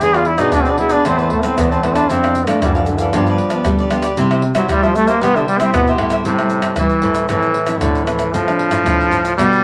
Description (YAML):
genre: samba and choro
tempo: 115 BPM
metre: 4/4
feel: straight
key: C major, A minor from 6.3 s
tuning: A4 = 437 Hz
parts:
  - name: brilliant trombone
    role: second line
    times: 0.0-9.6 s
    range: C3 to G#4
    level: -19 LUFS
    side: equal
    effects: none
  - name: cavaquinho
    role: accompaniment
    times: 0.0-6.3 s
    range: E4 to A5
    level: -23 LUFS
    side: equal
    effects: none
  - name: nylon-string guitar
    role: accompaniment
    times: 0.0-9.6 s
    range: F2 to G#4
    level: -24 LUFS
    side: equal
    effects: none
  - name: nylon-string guitar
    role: bass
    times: 0.0-9.6 s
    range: E2 to G3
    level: -22 LUFS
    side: equal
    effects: none
  - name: tube shaker, surdo, pandeiro and tamborim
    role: percussion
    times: 0.0-9.6 s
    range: none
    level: -25 LUFS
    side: equal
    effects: none
room: wet club reverb, RT60 0.6 s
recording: none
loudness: -16 LUFS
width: mono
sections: 0.0-6.3 A section; 6.3-9.6 B section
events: trombone solo 0.0-6.3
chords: 0.0 E7; 1.1 Amadd9/E; 2.1 Dmadd9/F; 3.1 G7; 4.2 C; 6.3 Am7; 7.3 Fmaj7/A; 8.3 Dm7/A